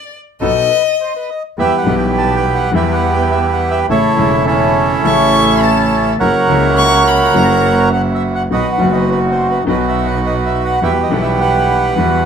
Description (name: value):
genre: tango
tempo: 104 BPM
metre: 4/4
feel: rubato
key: E harmonic minor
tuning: A4 = 441 Hz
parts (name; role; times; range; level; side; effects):
- warm violin; second line; 0.0-1.2, 5.1-7.8 s; D5 to C#6; -16 LUFS; left 6 dB; none
- warm grand piano; accompaniment; 0.4-12.3 s; E1 to F#5; -18 LUFS; left 4 dB; none
- bandoneon; stabs; 0.4-12.3 s; G3 to F#5; -23 LUFS; right 4 dB; none
- clear double bass; bass; 0.4-12.3 s; E1 to E2; -19 LUFS; right 2 dB; none
- bandoneon; melody; 0.7-12.3 s; C#4 to A5; -14 LUFS; right 3 dB; none
room: moderate studio ambience, RT60 0.5 s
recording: band playing live in one room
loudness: -11 LUFS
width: side -7 dB against mid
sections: 0.0-1.6 A section; 1.6-12.3 B section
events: violin solo 0.0-1.6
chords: 0.4 B7; 1.6 Em; 3.9 A; 6.2 F#7; 8.5 B; 10.8 Emadd9